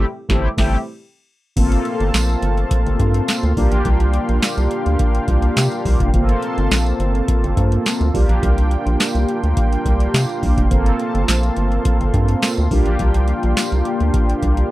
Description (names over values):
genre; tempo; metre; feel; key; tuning
early-eighties boogie funk; 105 BPM; 4/4; straight; G minor; A4 = 441 Hz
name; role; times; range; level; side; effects
mellow synth brass; accompaniment; 0.0-14.7 s; A3 to A4; -21 LUFS; equal; chorus
rubbery square bass; bass; 0.0-14.6 s; F1 to C3; -18 LUFS; equal; none
booming analog drum machine; drums; 0.3-14.7 s; crash cymbal, handclaps, hi-hat, kick drum, snare drum; -18 LUFS; equal; none
brassy analog pad; sustained chords; 1.6-14.7 s; Bb3 to C6; -28 LUFS; right 1 dB; chorus
tambourine; percussion; 2.1-13.7 s; none; -31 LUFS; right 5 dB; none
room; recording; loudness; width
little or no reverb; dry, close 1970s-style studio recording; -15 LUFS; side -16 dB against mid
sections
0.0-1.6 A section; 1.6-14.7 B section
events
band accent 0.0-1.6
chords
0.0 Fmaj9 (rootless); 1.6 Gm11; 3.6 C7sus4; 6.1 Gm11; 8.1 C7sus4; 10.7 Gm11; 12.7 C7sus4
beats
0.42 0.99 | 1.57 2.14 2.71 3.28 | 3.85 4.42 5.00 5.57 | 6.14 6.71 7.28 7.85 | 8.42 8.99 9.57 10.14 | 10.71 11.28 11.85 12.42 | 12.99 13.57 14.14 14.71